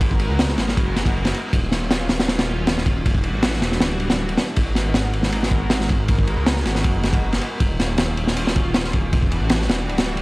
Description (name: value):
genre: drum and bass, jungle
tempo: 158 BPM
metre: 4/4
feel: straight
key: G# minor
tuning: A4 = 440 Hz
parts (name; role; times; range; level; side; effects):
- lush unison pad; sustained chords; 0.0-10.2 s; D#3 to A#4; -28 LUFS; equal; chorus, phaser
- detuned saw bass; bass; 0.0-10.2 s; D1 to C#2; -23 LUFS; equal; tube saturation
- crunchy breakbeat drum kit; drums; 0.0-10.2 s; kick drum, ride cymbal, snare drum; -19 LUFS; equal; none
room: studio ambience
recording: dry, gritty hardware recording, transformer saturation, vinyl crackle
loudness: -18 LUFS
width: side -23 dB against mid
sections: 0.0-10.2 A section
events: none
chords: 0.0 G#m9; 1.5 D#m9; 3.0 Em9; 4.6 G#m9; 7.6 D#m9; 9.1 Em9